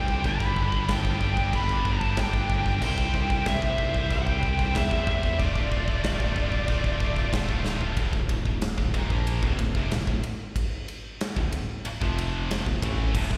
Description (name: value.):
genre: heavy metal.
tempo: 93 BPM.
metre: 4/4.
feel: straight.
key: D dorian, D minor from 8.0 s.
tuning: A4 = 440 Hz.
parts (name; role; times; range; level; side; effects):
high-gain lead guitar; melody; 0.0-7.3 s; D5 to B5; -32 LUFS; equal; distortion, slapback echo, digital delay.
pipe organ, soft reed; sustained chords; 0.0-7.9, 13.1-13.4 s; C3 to B4; -45 LUFS; equal; none.
heavy high-gain guitar; riff; 0.0-13.4 s; D2 to Bb3; -38 LUFS; equal; distortion, slapback echo.
heavy high-gain guitar; riff; 0.0-13.4 s; D2 to C5; -39 LUFS; equal; none.
tight distorted guitar; riff; 0.0-13.4 s; D2 to C5; -38 LUFS; equal; distortion, slapback echo.
smooth gliding synth bass; bass; 0.0-13.4 s; D1 to E2; -31 LUFS; equal; none.
big rock drum kit; drums; 0.1-13.4 s; china cymbal, crash cymbal, kick drum, ride cymbal, snare drum, toms; -31 LUFS; equal; none.
room: little or no reverb.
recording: live gig heard through the venue's PA, recital hall reverb.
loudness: -26 LUFS.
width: mono.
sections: 0.0-8.0 A section; 8.0-13.4 B section.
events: drum fill 7.7-8.0.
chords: 0.2 G; 2.8 C; 5.4 Dm; 12.0 F5; 12.7 Dm.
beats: | 0.24 0.89 1.53 2.18 | 2.82 3.46 4.11 4.75 | 5.40 6.04 6.69 7.33 | 7.98 8.62 9.27 9.91 | 10.56 11.21 11.85 12.50 | 13.15.